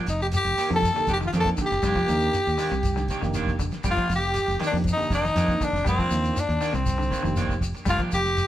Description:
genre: afrobeat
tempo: 119 BPM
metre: 4/4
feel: straight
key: F mixolydian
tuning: A4 = 441 Hz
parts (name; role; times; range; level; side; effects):
- electric guitar at the edge of break-up; arpeggios; 0.0-8.2 s; C3 to G3; -32 LUFS; left 2 dB; none
- electric guitar at the edge of break-up; stabs; 0.0-8.4 s; Eb3 to G4; -34 LUFS; right 4 dB; tape echo
- raspy tenor saxophone; melody; 0.1-8.5 s; C4 to A4; -25 LUFS; left 2 dB; none
- growling trombone; second line; 0.1-8.5 s; C4 to A4; -34 LUFS; right 4 dB; none
- fingered electric bass; bass; 0.1-8.4 s; F1 to F2; -27 LUFS; equal; none
- cloth-damped thuddy drum kit; drums; 0.1-8.5 s; hi-hat, kick drum, snare drum; -32 LUFS; equal; none
- shekere; percussion; 0.1-8.5 s; none; -33 LUFS; left 1 dB; none
- barky tine electric piano; accompaniment; 0.7-7.6 s; Bb3 to Bb4; -34 LUFS; right 4 dB; overdrive
room: moderate studio reverb, RT60 0.9 s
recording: band playing live in one room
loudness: -22 LUFS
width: side -13 dB against mid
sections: 0.0-8.5 A section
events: none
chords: 0.0 F13sus4

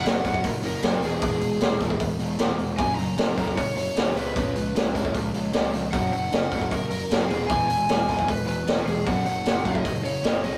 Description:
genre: punk rock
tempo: 153 BPM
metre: 4/4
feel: straight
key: F# mixolydian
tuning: A4 = 440 Hz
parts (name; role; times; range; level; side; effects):
- lead guitar through a small cranked amp; melody; 0.0-10.6 s; G#4 to A#5; -31 LUFS; equal; overdrive, delay
- overdriven electric guitar; riff; 0.0-10.6 s; E2 to C#4; -36 LUFS; equal; none
- overdriven electric guitar; riff; 0.0-10.6 s; F#2 to B3; -35 LUFS; equal; none
- fuzz picked electric bass; bass; 0.0-10.6 s; E1 to D#2; -34 LUFS; equal; overdrive
- raw garage drum kit; drums; 0.1-10.5 s; hi-hat, kick drum, snare drum; -27 LUFS; equal; none
room: light reverb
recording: rough rehearsal-room recording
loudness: -25 LUFS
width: mono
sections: 0.0-10.6 A section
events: none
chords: 0.0 F#; 1.0 E; 2.8 F#; 4.2 C#; 5.9 F#; 7.3 E; 9.1 F#5

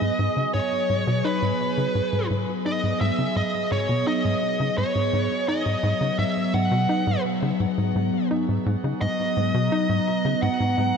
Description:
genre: ambient, sequencer-driven space music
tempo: 85 BPM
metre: 4/4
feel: straight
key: G# minor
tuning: A4 = 442 Hz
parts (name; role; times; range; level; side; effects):
- bluesy overdriven lead guitar; melody; 0.0-11.0 s; B4 to F#5; -26 LUFS; equal; distortion, ping-pong delay
- evolving wavetable pad; sustained chords; 0.0-11.0 s; F#3 to A#5; -26 LUFS; equal; chorus, built-in reverb, phaser
- tight sequencer bass; riff; 0.0-10.9 s; G#2 to D#4; -26 LUFS; equal; ping-pong delay
room: wet lush hall reverb, RT60 2.7 s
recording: none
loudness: -21 LUFS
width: side -6 dB against mid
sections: 0.0-11.0 A section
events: none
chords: 0.0 G#m7

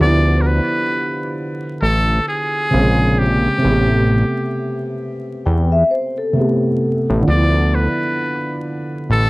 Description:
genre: hip hop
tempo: 66 BPM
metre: 4/4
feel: swing 60% on 16ths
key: D dorian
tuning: A4 = 442 Hz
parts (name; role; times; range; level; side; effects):
- trumpet with metal mute; melody; 0.0-9.3 s; G4 to D5; -20 LUFS; equal; low-pass filter
- felt-muted upright piano; accompaniment; 0.0-9.3 s; C3 to C5; -19 LUFS; right 1 dB; cassette tape, low-pass filter
- fat analog bass; bass; 0.0-9.3 s; A1 to E2; -15 LUFS; equal; none
- vibraphone with soft mallets; second line; 5.5-7.2 s; A4 to G5; -19 LUFS; left 2 dB; low-pass filter, analog delay
room: moderate studio reverb, RT60 0.7 s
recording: vinyl crackle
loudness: -15 LUFS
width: side -22 dB against mid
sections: 0.0-9.3 A section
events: none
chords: 0.0 Dm69; 2.7 Bbm9; 3.6 Am9; 7.3 Dm69

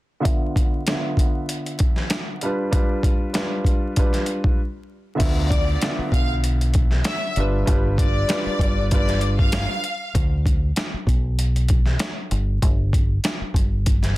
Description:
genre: hip hop, boom-bap hip-hop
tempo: 97 BPM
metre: 4/4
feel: swing 54% on 16ths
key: D dorian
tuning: A4 = 440 Hz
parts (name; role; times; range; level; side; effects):
- dark concert grand piano; accompaniment; 0.2-9.8 s; D3 to E5; -26 LUFS; equal; low-pass filter, plate reverb
- boom bap sampler-style drum kit; drums; 0.3-14.2 s; crash cymbal, hi-hat, kick drum, snare drum; -21 LUFS; equal; none
- deep dub fingered electric bass; bass; 5.2-14.2 s; G1 to D2; -21 LUFS; equal; none
- rich studio violin section; melody; 5.5-10.1 s; D5 to F5; -27 LUFS; left 1 dB; plate reverb
room: light reverb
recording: dense, heavily limited modern master, vinyl crackle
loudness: -19 LUFS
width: side -18 dB against mid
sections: 0.3-5.2 A section; 5.2-14.2 B section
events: filter sweep on grand piano 0.3-5.2; break 4.6-5.2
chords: 0.3 Dm69; 2.4 G7; 5.2 Dm69; 7.4 G7; 10.1 Bm; 12.3 N.C.

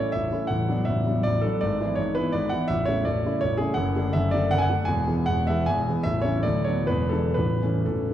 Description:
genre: classical, romantic triple-time dance for piano with dotted rhythms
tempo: 118-176 BPM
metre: 3/4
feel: rubato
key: A major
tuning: A4 = 443 Hz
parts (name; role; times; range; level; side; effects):
- warm concert grand piano; solo; 0.0-8.1 s; A0 to G#5; -22 LUFS; equal; none
room: wet scoring stage reverb, RT60 1.9 s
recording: dark, warm production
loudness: -22 LUFS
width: side -11 dB against mid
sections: 0.0-8.1 A section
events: none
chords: 0.0 A; 0.5 Bm7/A; 1.6 E7/G#; 2.7 A; 3.8 D/F#; 4.9 E; 6.1 A; 6.5 Bm/D; 6.9 E7; 7.4 A

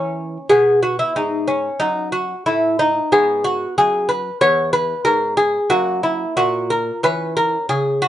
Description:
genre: classical, baroque-style dance for lute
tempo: 92 BPM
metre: 4/4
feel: rubato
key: unclear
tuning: A4 = 437 Hz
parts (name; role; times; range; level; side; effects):
- lute; solo; 0.0-8.1 s; E2 to C#5; -16 LUFS; equal; none
room: light reverb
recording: band playing live in one room, nothing above 11.0 kHz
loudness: -16 LUFS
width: side -12 dB against mid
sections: 0.0-8.1 A section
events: none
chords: 0.5 B5; 3.1 G#m; 4.4 E6; 5.7 F#; 7.0 C#m

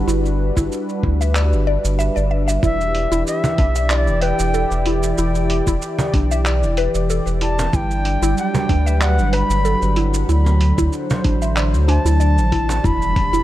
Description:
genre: organic downtempo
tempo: 94 BPM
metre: 4/4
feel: swing 54% on 16ths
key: E minor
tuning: A4 = 440 Hz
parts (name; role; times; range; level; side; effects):
- warm analog pad; sustained chords; 0.0-13.4 s; D3 to D5; -23 LUFS; equal; chorus, sidechain pumping, shimmer reverb
- mallet-like synth pluck; arpeggios; 0.0-13.4 s; D4 to E5; -24 LUFS; equal; chorus, phaser, digital delay, shimmer reverb
- round analog bass; bass; 0.0-13.4 s; E1 to D2; -18 LUFS; equal; sidechain pumping
- dusty soul sampler-style drum kit; drums; 0.1-13.4 s; handclaps, hi-hat, shaker; -27 LUFS; right 2 dB; overdrive, studio reverb
- electronic kick drum; drums; 0.6-13.3 s; none; -19 LUFS; equal; overdrive, studio reverb
- bright reedy bansuri; melody; 2.6-13.4 s; D5 to B5; -24 LUFS; equal; vintage 12-bit sampler grit, digital delay, shimmer reverb
- cajon; percussion; 3.4-12.8 s; none; -22 LUFS; right 2 dB; none
- impact; sound effects; 12.8-13.4 s; none; -25 LUFS; equal; none
room: light reverb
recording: none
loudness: -15 LUFS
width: side -14 dB against mid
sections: 0.0-12.8 A section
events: impact 12.8-13.4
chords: 0.0 Gmaj7; 2.6 Em7; 7.7 Gmaj7; 10.3 D7; 12.8 Em7

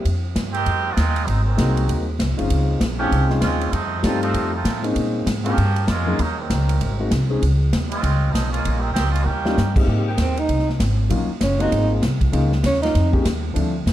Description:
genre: jazz, big band swing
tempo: 195 BPM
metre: 4/4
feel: swing 61% on 8ths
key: Ab major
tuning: A4 = 440 Hz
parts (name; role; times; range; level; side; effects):
- warm concert grand piano; accompaniment; 0.0-7.4, 9.4-13.7 s; F3 to Ab4; -24 LUFS; left 2 dB; none
- upright bass; bass; 0.1-13.9 s; Gb1 to Bb2; -20 LUFS; equal; none
- swinging big-band drum kit; drums; 0.1-13.9 s; crash cymbal, hi-hat, kick drum, ride cymbal, snare drum; -24 LUFS; equal; none
- muted trombone section; second line; 0.5-9.8 s; Eb3 to G4; -25 LUFS; right 4 dB; none
- mellow saxophone section; sustained chords; 10.1-12.9 s; Eb3 to G4; -33 LUFS; left 1 dB; none
- mellow tenor saxophone; melody; 10.2-13.1 s; C4 to Eb4; -22 LUFS; right 2 dB; none
room: light reverb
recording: dark, warm production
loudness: -18 LUFS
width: side -13 dB against mid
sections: 0.1-9.9 A section; 9.9-13.9 B section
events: trombone section solo 0.1-9.9; drum fill 9.3-9.6; tenor saxophone solo 9.9-13.9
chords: 0.1 Fm9; 1.3 Ab7; 2.5 Dbmaj7; 3.7 F7; 5.0 Bbm7; 6.2 Ebm7; 6.8 Ab7; 7.4 Dbmaj7; 8.6 Bbm7; 9.3 Eb7; 9.9 Abmaj7; 11.1 Ebm7; 11.7 Ab; 12.3 Db69

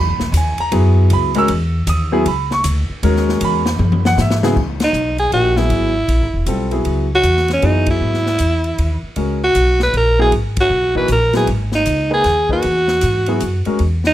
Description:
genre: modal jazz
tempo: 156 BPM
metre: 3/4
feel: swing 64% on 8ths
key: C# dorian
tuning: A4 = 440 Hz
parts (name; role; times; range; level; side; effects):
- clear concert grand piano; accompaniment; 0.0-13.8 s; C#3 to E6; -18 LUFS; equal; none
- upright bass; bass; 0.0-14.1 s; E1 to G#2; -17 LUFS; equal; none
- swinging big-band drum kit; drums; 0.2-14.1 s; crash cymbal, hi-hat, kick drum, ride cymbal, snare drum, toms; -24 LUFS; left 2 dB; none
- growling alto saxophone; melody; 4.8-14.1 s; C#4 to B4; -16 LUFS; right 1 dB; plate reverb
room: light reverb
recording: none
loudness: -13 LUFS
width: side -13 dB against mid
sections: 0.0-4.6 A section; 4.6-14.1 B section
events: drum fill 3.8-4.6; band accent 4.7, 7.8, 10.5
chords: 0.0 C#m11

